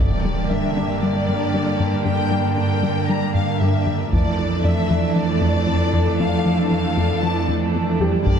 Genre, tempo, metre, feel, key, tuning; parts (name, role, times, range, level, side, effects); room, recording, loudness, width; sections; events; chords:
cinematic, hybrid orchestral and electronic film score; 116 BPM; 4/4; straight; D minor; A4 = 442 Hz
rich symphonic violin section; melody; 0.0-8.4 s; D5 to Bb5; -28 LUFS; left 6 dB
rich chamber violin section; second line; 0.0-8.4 s; D4 to A4; -29 LUFS; left 2 dB
rich symphonic viola section; accompaniment; 0.0-8.4 s; D3 to Bb3; -26 LUFS; right 2 dB
airy breathy pad; sustained chords; 0.0-8.4 s; D3 to D5; -26 LUFS; right 2 dB; chorus, phaser
plucky analog bass; riff; 0.0-8.4 s; F2 to G3; -23 LUFS; left 3 dB
warm symphonic cello section; bass; 0.0-8.4 s; F2 to G2; -23 LUFS; right 4 dB
impact; sound effects; 0.0-2.1 s; -27 LUFS; equal
felt-muted upright piano; texture; 0.8-8.4 s; G3 to D5; -30 LUFS; right 1 dB
solo taiko drums; drums; 4.1-5.1, 8.3-8.4 s; -22 LUFS; equal
moderate scoring stage reverb, RT60 1.9 s; dark, warm production; -17 LUFS; side -7 dB against mid
0.0-8.4 A section
impact 0.0-2.1
0.0 Gm; 4.1 Dmadd9/F